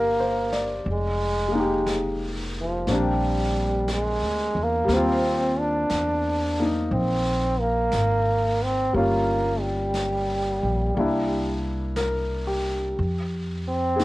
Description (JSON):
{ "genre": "jazz ballad", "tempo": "59 BPM", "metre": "4/4", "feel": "swing 67% on 8ths", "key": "C minor", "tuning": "A4 = 440 Hz", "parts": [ { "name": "clear trombone", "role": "melody", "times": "0.0-14.0 s", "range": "F3 to D4", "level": "-24 LUFS", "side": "right 1 dB", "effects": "none" }, { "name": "warm baby grand piano", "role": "accompaniment", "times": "0.0-14.0 s", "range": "G3 to D5", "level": "-27 LUFS", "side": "left 1 dB", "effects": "cassette tape" }, { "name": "upright bass", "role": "bass", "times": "0.0-14.0 s", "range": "F1 to F2", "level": "-28 LUFS", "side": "equal", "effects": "none" }, { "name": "jazz brush drum kit", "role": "drums", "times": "0.5-14.0 s", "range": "brushed snare drum, hi-hat, snare drum", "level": "-37 LUFS", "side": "equal", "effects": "cassette tape" } ], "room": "light reverb", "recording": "home recording on cassette", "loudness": "-22 LUFS", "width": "side -18 dB against mid", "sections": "0.0-14.0 A section", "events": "none", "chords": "0.0 Cm11; 0.9 Fm11; 2.9 Bb69; 4.9 Eb69; 8.9 Gm7b5; 11.0 C7; 13.0 Fsus2" }